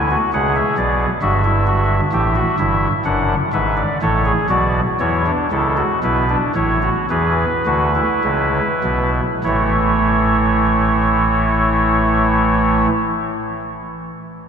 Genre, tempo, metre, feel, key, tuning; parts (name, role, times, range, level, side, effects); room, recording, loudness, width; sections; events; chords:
classical, baroque-style 3-part fugue for pipe organ; 48-69 BPM; 4/4; straight; A major; A4 = 440 Hz
chamber organ, soft reed; solo; 0.0-12.9 s; F#1 to G#5; -15 LUFS; equal
wet cathedral reverb, RT60 5.4 s; -14 LUFS; side -7 dB against mid
0.0-9.4 A section; 9.4-14.3 B section
slowing down 0.0-9.4
0.0 E; 1.2 A5/G; 3.1 D/F#; 5.0 A; 7.1 E7; 9.4 A